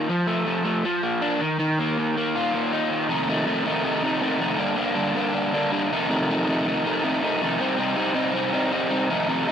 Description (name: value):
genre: rock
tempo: 160 BPM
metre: 4/4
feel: straight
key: unclear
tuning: A4 = 440 Hz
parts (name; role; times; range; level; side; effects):
- crunchy overdriven guitar; solo; 0.0-9.5 s; F2 to F4; -21 LUFS; equal; none
room: light reverb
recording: none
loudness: -21 LUFS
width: side -8 dB against mid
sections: 0.0-3.1 A section; 3.1-9.5 B section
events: none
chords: 0.1 F; 0.8 Bb/F; 1.4 Ebsus2; 3.1 F7; 4.6 Gm; 5.9 F7; 7.6 Cm